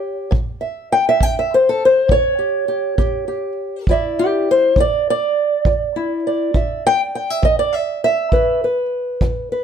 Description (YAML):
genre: acoustic country blues, solo or duo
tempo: 68 BPM (dotted quarters)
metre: 12/8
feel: straight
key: A mixolydian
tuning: A4 = 440 Hz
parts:
  - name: fingerpicked old ladder-braced acoustic guitar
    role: melody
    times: 0.0-9.6 s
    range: A2 to G5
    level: -16 LUFS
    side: equal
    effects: none
  - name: kick drum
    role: drums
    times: 0.3-9.3 s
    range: none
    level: -19 LUFS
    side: right 1 dB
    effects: none
room: light reverb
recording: none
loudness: -15 LUFS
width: side -8 dB against mid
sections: 0.0-9.6 A section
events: steel-string acoustic guitar solo 0.0-9.6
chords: 0.0 A7; 3.9 E5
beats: | 0.33 1.22 2.11 3.00 | 3.88 4.77 5.66 6.55 | 7.44 8.32 9.21